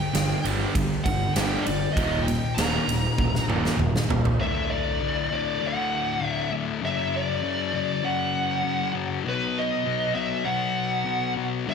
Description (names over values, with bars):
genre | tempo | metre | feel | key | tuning
quiet-loud alternative rock | 99 BPM | 4/4 | straight | unclear | A4 = 443 Hz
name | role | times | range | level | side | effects
high-gain lead guitar | melody | 0.0-11.7 s | B4 to Bb5 | -27 LUFS | equal | distortion, slapback echo
crunchy overdriven guitar | riff | 0.0-4.4 s | Eb2 to G3 | -29 LUFS | right 8 dB | slapback echo
thick fuzz guitar | riff | 0.0-11.7 s | D2 to B3 | -27 LUFS | left 6 dB | distortion
fuzz picked electric bass | bass | 0.1-4.3 s | Eb1 to G1 | -29 LUFS | right 1 dB | overdrive
big rock drum kit | drums | 0.1-4.4 s | kick drum, ride cymbal, snare drum, toms | -27 LUFS | right 1 dB | none
room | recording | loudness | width
moderate lush hall reverb, RT60 1.6 s | big arena sound | -23 LUFS | side -6 dB against mid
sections
0.0-4.4 A section; 4.4-11.7 B section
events
lead electric guitar solo 0.0-4.4; drum fill 3.2-4.4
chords
0.0 G5; 2.0 Eb5; 4.4 D; 6.8 F#5; 9.2 B